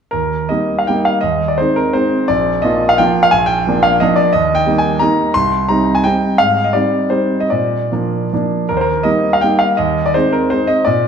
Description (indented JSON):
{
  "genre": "classical, romantic triple-time dance for piano with dotted rhythms",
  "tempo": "142-191 BPM",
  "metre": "3/4",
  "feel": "rubato",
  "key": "Eb major",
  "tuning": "A4 = 443 Hz",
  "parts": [
    { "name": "clear grand piano", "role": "solo", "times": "0.1-11.1 s", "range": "Bb1 to C6", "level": "-12 LUFS", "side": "equal", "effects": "none" }
  ],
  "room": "wet recital hall reverb, RT60 1.7 s",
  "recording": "dark, warm production",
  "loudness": "-12 LUFS",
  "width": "side -7 dB against mid",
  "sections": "0.1-8.7 A section; 8.7-11.1 A section",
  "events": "none",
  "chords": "0.1 Eb; 1.2 Ab/Eb; 2.3 Bb; 4.3 Eb; 5.3 Cm; 6.4 Abmaj7; 7.5 Bb; 8.7 Eb; 9.8 Ab/Eb"
}